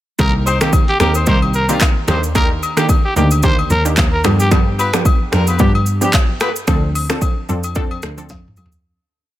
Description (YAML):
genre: afrobeats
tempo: 111 BPM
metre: 4/4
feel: swing 55% on 16ths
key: C dorian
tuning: A4 = 441 Hz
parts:
  - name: growling trumpet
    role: melody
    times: 0.2-4.5 s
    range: G4 to C5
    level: -20 LUFS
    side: equal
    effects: tape echo
  - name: analog pluck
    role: accompaniment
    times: 0.2-8.4 s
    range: Eb3 to A4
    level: -21 LUFS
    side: right 2 dB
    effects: chorus
  - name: dark cello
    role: bass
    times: 0.2-8.8 s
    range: C2 to G2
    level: -17 LUFS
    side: equal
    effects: none
  - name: afro-pop drum kit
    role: drums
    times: 0.2-8.8 s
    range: finger snaps, handclaps, hi-hat, kick drum, rim click, shaker, snare drum, toms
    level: -16 LUFS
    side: equal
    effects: overdrive
  - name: agogo bells and woodblock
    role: percussion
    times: 0.2-8.7 s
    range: none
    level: -26 LUFS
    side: left 6 dB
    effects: none
  - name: warm horn section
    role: second line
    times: 0.5-6.5 s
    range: F3 to C5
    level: -23 LUFS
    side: left 3 dB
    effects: none
room: small room ambience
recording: dense, heavily limited modern master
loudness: -12 LUFS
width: side -14 dB against mid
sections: 0.2-8.8 chorus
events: fade-out 6.7-8.8; drum fill 8.3-8.8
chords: 0.2 Cm7; 2.1 Ebmaj7; 4.2 G7; 6.7 Dm7